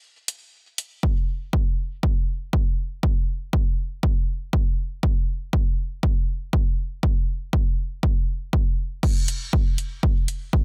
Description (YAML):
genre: techno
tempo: 120 BPM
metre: 4/4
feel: straight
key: none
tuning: none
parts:
  - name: punchy analog drum machine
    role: drums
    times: 0.3-0.9, 9.0-10.4 s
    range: crash cymbal, hi-hat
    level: -33 LUFS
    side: equal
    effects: low-pass filter on hats, low-pass filter on cymbals
  - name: electronic kick drum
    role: drums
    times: 1.0-10.6 s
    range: none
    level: -24 LUFS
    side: equal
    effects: none
room: little or no reverb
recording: dense, heavily limited modern master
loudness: -24 LUFS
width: mono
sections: 0.0-1.0 A section; 1.0-9.0 B section; 9.0-10.6 A section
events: break 0.0-1.0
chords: none